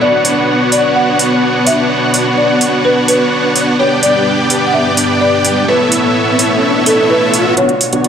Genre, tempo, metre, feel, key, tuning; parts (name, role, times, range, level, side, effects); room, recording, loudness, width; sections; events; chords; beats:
EDM, festival progressive house; 127 BPM; 4/4; straight; B minor; A4 = 440 Hz
folk marimba with soft mallets; melody; 0.0-8.1 s; A4 to F#5; -15 LUFS; equal; digital delay
lush unison pad; sustained chords; 0.0-8.1 s; G2 to D5; -19 LUFS; left 1 dB; chorus
dense compressed supersaw; riff; 0.0-8.1 s; B3 to G5; -12 LUFS; equal; low-pass filter, digital delay
electronic hi-hat; drums; 0.2-8.1 s; -15 LUFS; right 2 dB
riser; sound effects; 5.4-8.1 s; -20 LUFS; left 2 dB
moderate digital room reverb, RT60 1.0 s, digital ambience; -9 LUFS; side -8 dB against mid
0.0-7.6 A section
riser 5.4-7.6, 7.6-8.1
0.0 Bmadd9; 3.8 G; 5.7 Aadd9; 7.6 Bmadd9
| 0.01 0.48 0.96 1.43 | 1.90 2.38 2.85 3.32 | 3.79 4.26 4.74 5.21 | 5.68 6.16 6.63 7.10 | 7.57 8.04